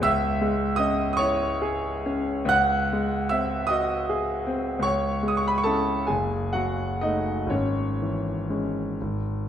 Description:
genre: classical, romantic nocturne for solo piano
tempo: 40-57 BPM (dotted quarters)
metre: 6/8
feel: rubato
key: C# minor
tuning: A4 = 440 Hz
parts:
  - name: clear concert grand piano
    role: solo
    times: 0.0-9.5 s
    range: F#1 to F#6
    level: -23 LUFS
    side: equal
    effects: none
room: moderate recital hall reverb, RT60 1.4 s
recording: dark, warm production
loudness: -23 LUFS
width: side -9 dB against mid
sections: 0.0-9.5 A section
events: none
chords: 0.1 C#m; 2.5 G#7/C#; 4.9 C#m; 6.1 D#dim/F#; 7.5 C#m/G#; 9.0 N.C.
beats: | 0.05 1.17 | 2.49 3.69 | 4.85 6.08 | 7.51 8.98

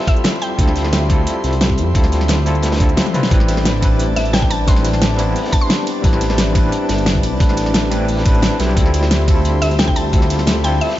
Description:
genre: liquid drum and bass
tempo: 176 BPM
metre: 4/4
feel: straight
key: A minor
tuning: A4 = 439 Hz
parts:
  - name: mallet-like synth pluck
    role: melody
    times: 0.0-0.9, 4.2-6.1, 9.6-11.0 s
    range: E5 to C6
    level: -24 LUFS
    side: equal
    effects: chorus, ping-pong delay
  - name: overdriven tine electric piano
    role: accompaniment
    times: 0.0-11.0 s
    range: G3 to C5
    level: -21 LUFS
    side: left 1 dB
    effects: fast tremolo, ping-pong delay
  - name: airy breathy pad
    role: sustained chords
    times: 0.0-11.0 s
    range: D4 to C6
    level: -26 LUFS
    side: left 2 dB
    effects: chorus
  - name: crunchy breakbeat drum kit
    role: drums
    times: 0.1-11.0 s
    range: hi-hat, snare drum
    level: -27 LUFS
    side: equal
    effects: high-pass filter on hats, high-pass filter on snare, high-pass filter on room
  - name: electronic kick drum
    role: drums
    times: 0.1-10.2 s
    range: none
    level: -15 LUFS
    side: equal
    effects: none
  - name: pop drum kit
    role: drums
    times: 0.1-10.9 s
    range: hi-hat, ride cymbal, snare drum, toms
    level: -21 LUFS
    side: equal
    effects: none
  - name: dark detuned saw bass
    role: bass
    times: 0.6-10.8 s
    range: G1 to F2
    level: -18 LUFS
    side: equal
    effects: none
room: light reverb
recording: dark, warm production, nothing above 7.6 kHz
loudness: -13 LUFS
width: side -14 dB against mid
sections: 0.0-11.0 A section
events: kick drops out 3.0-3.3; drum fill 3.1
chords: 0.0 Dm11; 3.3 Am11; 8.8 Dm11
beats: 0.24 | 0.59 0.93 1.27 1.61 | 1.95 2.29 2.63 2.97 | 3.31 3.65 4.00 4.34 | 4.68 5.02 5.36 5.70 | 6.04 6.38 6.72 7.06 | 7.40 7.75 8.09 8.43 | 8.77 9.11 9.45 9.79 | 10.13 10.47 10.81

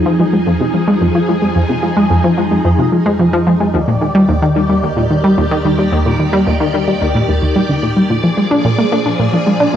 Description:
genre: ambient, sequencer-driven space music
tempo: 110 BPM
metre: 4/4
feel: straight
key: F dorian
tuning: A4 = 438 Hz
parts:
  - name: phased string machine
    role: sustained chords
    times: 0.0-9.8 s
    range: Eb2 to D5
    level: -17 LUFS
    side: equal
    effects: ensemble chorus, phaser
  - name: concert harp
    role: arpeggios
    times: 0.0-9.8 s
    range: D4 to Bb4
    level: -31 LUFS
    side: left 2 dB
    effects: none
  - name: analog pluck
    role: riff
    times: 0.1-9.8 s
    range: Eb2 to D4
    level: -12 LUFS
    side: equal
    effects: chorus, ping-pong delay
room: wet studio reverb, RT60 0.5 s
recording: home recording on cassette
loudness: -11 LUFS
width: side -10 dB against mid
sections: 0.0-9.8 A section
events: filter sweep on synth arpeggio sound 0.0-9.8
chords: 0.0 Fm7; 3.7 Ebmaj7; 8.1 Bb7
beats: 0.47 1.01 | 1.56 2.10 2.65 3.19 | 3.74 4.29 4.83 5.38 | 5.92 6.47 7.01 7.56 | 8.10 8.65 9.19 9.74

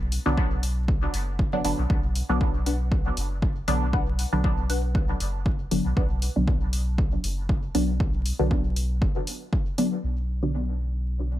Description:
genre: dub techno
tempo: 118 BPM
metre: 4/4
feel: swing 55% on 16ths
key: B minor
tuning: A4 = 440 Hz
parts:
  - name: soft dub sub bass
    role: bass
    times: 0.0-11.4 s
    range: F#1 to B1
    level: -26 LUFS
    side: equal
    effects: sidechain pumping
  - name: electronic hi-hat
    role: drums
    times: 0.1-9.9 s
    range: none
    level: -34 LUFS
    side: left 1 dB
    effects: low-pass filter on hats, low-pass filter on room
  - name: filtered dub chord stab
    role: stabs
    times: 0.3-10.6 s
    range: D3 to D4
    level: -28 LUFS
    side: equal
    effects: phaser, sidechain pumping, dub echo
  - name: electronic kick drum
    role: drums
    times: 0.4-9.6 s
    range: none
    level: -25 LUFS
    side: equal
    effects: none
  - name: filtered dub chord stab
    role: riff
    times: 1.9-6.1 s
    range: D4 to F#5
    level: -35 LUFS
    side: left 3 dB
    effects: phaser, wide subtle chorus, vintage 12-bit sampler grit, sidechain pumping, dub echo
room: little or no reverb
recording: vinyl crackle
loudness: -23 LUFS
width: side -14 dB against mid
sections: 0.0-10.0 A section; 10.0-11.4 B section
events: none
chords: 0.0 Bm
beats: 0.37 0.88 1.39 | 1.90 2.41 2.92 3.42 | 3.93 4.44 4.95 5.46 | 5.97 6.48 6.98 7.49 | 8.00 8.51 9.02 9.53 | 10.04 10.54 11.05

